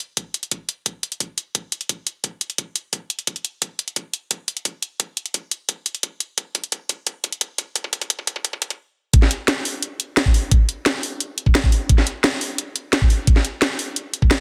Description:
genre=drum and bass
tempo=174 BPM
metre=4/4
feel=straight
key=none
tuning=none
part: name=drum and bass drum kit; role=drums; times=0.0-14.4 s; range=hi-hat, snare drum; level=-23 LUFS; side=equal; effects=none
part: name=electronic kick drum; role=drums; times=0.2-14.3 s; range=none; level=-20 LUFS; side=equal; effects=high-pass filter on kick, high-pass filter on room
room=light reverb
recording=dense, heavily limited modern master, high-pass filter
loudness=-22 LUFS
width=mono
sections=0.0-9.1 A section; 9.1-14.4 B section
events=build-up 0.0-9.1; drum fill 3.6-8.8; stop 8.8-9.1; drop 9.1-14.4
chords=none

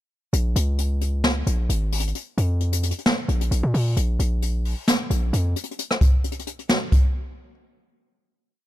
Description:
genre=hip hop, trap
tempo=132 BPM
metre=4/4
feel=half-time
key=Bb minor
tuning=A4 = 440 Hz
part: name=hard-hitting 808-style bass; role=bass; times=0.3-5.5 s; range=Ab1 to Bb2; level=-21 LUFS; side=equal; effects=none
part: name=jazz brush drum kit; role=drums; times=0.3-7.0 s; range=hi-hat, kick drum, rim click, snare drum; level=-22 LUFS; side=equal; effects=none
room=little or no reverb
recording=none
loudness=-20 LUFS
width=side -14 dB against mid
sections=0.3-7.6 hook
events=break 7.1-7.6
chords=none

